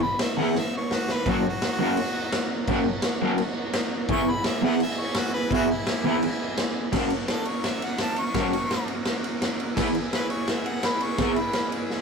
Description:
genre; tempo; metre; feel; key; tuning
garage rock duo or trio; 169 BPM; 4/4; straight; F# mixolydian; A4 = 440 Hz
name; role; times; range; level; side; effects
bright harmonica; melody; 0.0-11.7 s; E4 to C#6; -30 LUFS; left 1 dB; overdrive
raw garage drum kit; drums; 0.2-12.0 s; crash cymbal, kick drum, ride cymbal, snare drum; -26 LUFS; equal; none
raw garage guitar; riff; 0.4-11.3 s; E3 to G#4; -24 LUFS; equal; overdrive, harmonic tremolo
combo organ; sustained chords; 1.3-12.0 s; C#4 to C#5; -36 LUFS; equal; none
room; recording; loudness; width
light reverb; rough rehearsal-room recording, warm saturation; -23 LUFS; side -5 dB against mid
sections
0.0-6.9 A section; 6.9-12.0 B section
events
harmonica solo 0.0-6.9; drum fill 0.5-1.3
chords
0.0 E; 1.3 F#; 4.1 E; 6.9 F#; 9.8 E

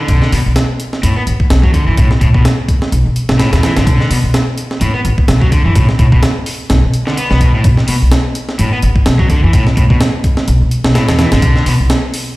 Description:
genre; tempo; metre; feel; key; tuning
breakbeat, breaks; 127 BPM; 4/4; swing 56% on 16ths; B minor; A4 = 440 Hz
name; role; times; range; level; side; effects
crunchy overdriven guitar; riff; 0.0-11.7 s; A2 to B3; -17 LUFS; equal; vintage 12-bit sampler grit, dub echo
upright bass; bass; 0.1-11.9 s; A1 to B2; -13 LUFS; equal; none
breakbeat sampler-style drum kit; drums; 0.1-12.3 s; hi-hat, kick drum, snare drum; -14 LUFS; equal; studio ambience
room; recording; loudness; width
light reverb, digital ambience; played on a big sound system in a bare room, large studio reverb; -10 LUFS; side -19 dB against mid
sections
0.0-12.4 A section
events
none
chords
0.0 Bm7

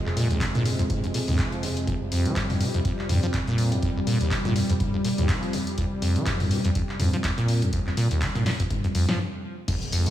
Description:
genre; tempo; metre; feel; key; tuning
acid house; 123 BPM; 4/4; swing 56% on 16ths; F minor; A4 = 440 Hz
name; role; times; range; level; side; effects
warm analog pad; sustained chords; 0.0-10.1 s; F2 to Ab3; -29 LUFS; equal; chorus, sidechain pumping
acid bass, saw; riff; 0.1-10.1 s; Eb2 to F3; -25 LUFS; equal; tube saturation, digital delay
punchy analog drum machine; drums; 0.1-10.1 s; crash cymbal, handclaps, hi-hat, snare drum, tambourine, toms; -29 LUFS; equal; none
electronic kick drum; drums; 0.4-9.8 s; none; -30 LUFS; equal; none
impact; sound effects; 9.7-10.1 s; none; -32 LUFS; equal; none
room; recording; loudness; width
light reverb; studio reverb; -22 LUFS; side -12 dB against mid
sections
0.0-9.7 A section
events
stop 9.2-9.7; impact 9.7-10.1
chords
0.0 Fm

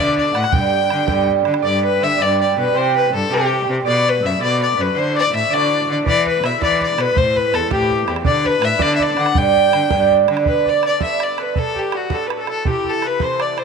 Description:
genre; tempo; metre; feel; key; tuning
celtic folk, Celtic jig; 109 BPM (dotted quarters); 6/8; straight; G major; A4 = 441 Hz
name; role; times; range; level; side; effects
warm fiddle; melody; 0.0-13.6 s; F#4 to G5; -19 LUFS; left 5 dB; none
Celtic harp; second line; 0.0-13.6 s; F#4 to G5; -29 LUFS; right 11 dB; none
accordion; second line; 0.0-13.6 s; F#4 to G5; -26 LUFS; left 12 dB; none
Irish bouzouki; accompaniment; 0.0-13.6 s; G2 to G4; -20 LUFS; right 11 dB; none
clear cello; bass; 0.0-10.4 s; E2 to E3; -22 LUFS; left 1 dB; none
bodhran; percussion; 0.1-1.6, 6.1-13.6 s; none; -22 LUFS; right 3 dB; none
room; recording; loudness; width
light reverb; 1960s-style stereo with parts hard left and right; -15 LUFS; side -5 dB against mid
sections
0.0-1.6 A section; 1.6-10.5 A section; 10.5-13.6 B section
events
none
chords
0.0 D6; 0.5 G; 2.7 C; 3.9 Bm; 5.0 Dadd9; 6.1 E7; 7.2 Am; 8.3 D6; 9.4 G; 11.6 D; 12.7 Am

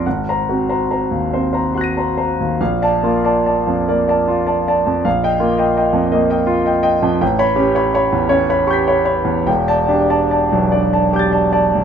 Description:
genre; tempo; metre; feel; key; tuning
classical, impressionist solo piano; 45-58 BPM (dotted quarters); 6/8; rubato; unclear; A4 = 440 Hz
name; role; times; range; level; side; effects
clear concert grand piano; solo; 0.0-11.8 s; E1 to Eb7; -14 LUFS; equal; none
room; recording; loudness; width
light reverb; minimal, uncompressed stereo recording; -14 LUFS; side -8 dB against mid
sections
0.0-11.8 A section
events
none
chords
0.1 Ab9; 2.6 Bbmaj7; 5.1 Ebadd9/Bb; 7.2 A9; 9.5 Em7

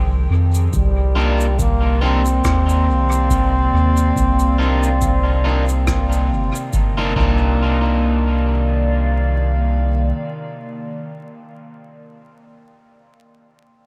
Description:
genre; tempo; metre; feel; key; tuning
ambient dub; 70 BPM; 4/4; swing 57% on 16ths; C minor; A4 = 438 Hz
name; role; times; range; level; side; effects
warbly tape-like pad; sustained chords; 0.0-11.8 s; C3 to G5; -29 LUFS; equal; chorus, built-in reverb, phaser
soft dub sub bass; bass; 0.0-10.1 s; G1 to F2; -20 LUFS; equal; none
cabasa and rim click; drums; 0.5-6.9 s; none; -32 LUFS; equal; dub echo
mellow trombone; melody; 0.7-6.7 s; G3 to C4; -26 LUFS; equal; dub echo
electronic kick drum; drums; 0.7-7.4 s; none; -25 LUFS; equal; none
electric guitar at the edge of break-up; stabs; 1.2-11.2 s; Bb3 to F4; -27 LUFS; equal; spring reverb, dub echo
room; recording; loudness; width
light reverb; vinyl crackle; -17 LUFS; mono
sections
0.0-7.6 A section; 7.6-11.0 B section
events
none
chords
0.0 Fm9; 0.7 Cm11

